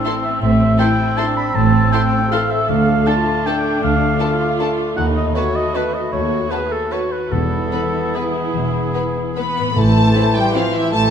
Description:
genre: classical, orchestral ballroom waltz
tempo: 138-170 BPM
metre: 3/4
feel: rubato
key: A minor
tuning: A4 = 440 Hz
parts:
  - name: mellow hollow concert flute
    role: second line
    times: 0.0-11.0 s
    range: E5 to E6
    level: -28 LUFS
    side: left 2 dB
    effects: none
  - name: dark studio viola section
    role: accompaniment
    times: 0.0-11.1 s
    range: C4 to B4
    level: -25 LUFS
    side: right 2 dB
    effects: none
  - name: warm bassoon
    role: accompaniment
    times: 0.0-11.1 s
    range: E3 to C4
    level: -25 LUFS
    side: equal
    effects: none
  - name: mellow French horn section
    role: sustained chords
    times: 0.0-11.1 s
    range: E3 to B4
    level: -32 LUFS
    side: left 2 dB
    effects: none
  - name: concert harp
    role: arpeggios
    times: 0.0-11.1 s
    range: A2 to E5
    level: -24 LUFS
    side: left 9 dB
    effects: none
  - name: warm studio violin section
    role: melody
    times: 0.1-11.1 s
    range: E5 to C6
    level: -24 LUFS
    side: left 2 dB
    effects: none
  - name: dark studio violin section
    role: second line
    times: 0.1-10.6 s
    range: B3 to B4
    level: -28 LUFS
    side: left 2 dB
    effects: none
  - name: dark clarinet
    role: second line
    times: 0.2-11.1 s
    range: E4 to B5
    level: -26 LUFS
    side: left 1 dB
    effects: none
  - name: warm oboe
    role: second line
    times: 0.2-11.1 s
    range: G#4 to B5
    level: -24 LUFS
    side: right 1 dB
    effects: none
  - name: warm studio cello section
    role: bass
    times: 0.4-11.1 s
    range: D2 to B3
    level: -21 LUFS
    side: right 2 dB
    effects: none
  - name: warm studio double bass section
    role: bass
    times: 0.4-11.1 s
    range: E1 to D#2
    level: -23 LUFS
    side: right 3 dB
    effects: none
  - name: timpani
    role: percussion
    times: 7.3-10.3 s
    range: E2 to A2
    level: -23 LUFS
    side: equal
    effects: none
room: wet recital hall reverb, RT60 1.6 s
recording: none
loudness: -15 LUFS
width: side -8 dB against mid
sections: 0.0-9.8 A section; 9.8-11.1 B section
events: none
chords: 0.0 Am; 2.7 Dm; 5.0 B7/D#; 7.3 E; 9.8 Am

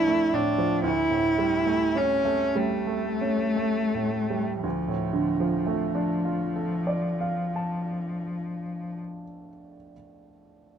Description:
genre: classical, romantic duo for cello and grand piano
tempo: 26-40 BPM (dotted quarters)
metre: 6/8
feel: rubato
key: D minor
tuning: A4 = 438 Hz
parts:
  - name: rich cello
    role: melody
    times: 0.0-9.0 s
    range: F3 to E4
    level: -26 LUFS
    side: left 1 dB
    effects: none
  - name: bright baby grand piano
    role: accompaniment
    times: 0.0-10.8 s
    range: D2 to A5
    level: -28 LUFS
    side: right 4 dB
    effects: none
room: light reverb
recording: dark, warm production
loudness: -24 LUFS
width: side -8 dB against mid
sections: 0.0-4.6 A section; 4.6-8.5 B section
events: slowing down 0.0-4.6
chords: 0.0 Dm; 0.8 A7/D; 4.6 Dm

